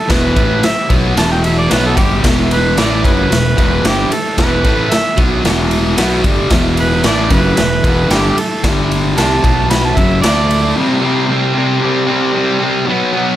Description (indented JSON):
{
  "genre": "garage rock duo or trio",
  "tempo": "113 BPM",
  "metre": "4/4",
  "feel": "straight",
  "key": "E minor",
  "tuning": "A4 = 438 Hz",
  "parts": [
    { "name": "mellow harmonica", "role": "melody", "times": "0.0-10.7 s", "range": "G4 to B5", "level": "-18 LUFS", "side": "right 2 dB", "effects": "overdrive" },
    { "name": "fuzz guitar", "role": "riff", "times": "0.1-13.4 s", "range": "E2 to D4", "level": "-15 LUFS", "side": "equal", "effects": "distortion" },
    { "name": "fuzz fingered electric bass", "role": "bass", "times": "0.1-10.7 s", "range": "E1 to D2", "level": "-18 LUFS", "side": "equal", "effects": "overdrive, tube saturation" },
    { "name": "raw garage drum kit", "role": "drums", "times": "0.1-10.6 s", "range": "kick drum, ride cymbal, snare drum", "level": "-16 LUFS", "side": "equal", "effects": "none" }
  ],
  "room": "moderate club reverb, RT60 0.5 s",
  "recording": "none",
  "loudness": "-11 LUFS",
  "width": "side -13 dB against mid",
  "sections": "0.0-10.8 A section; 10.8-13.4 B section",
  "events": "none",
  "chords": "0.0 Em; 8.6 G5; 9.2 Am7/C; 9.4 B5; 10.0 C#madd11/F#; 10.2 D5; 10.8 C5"
}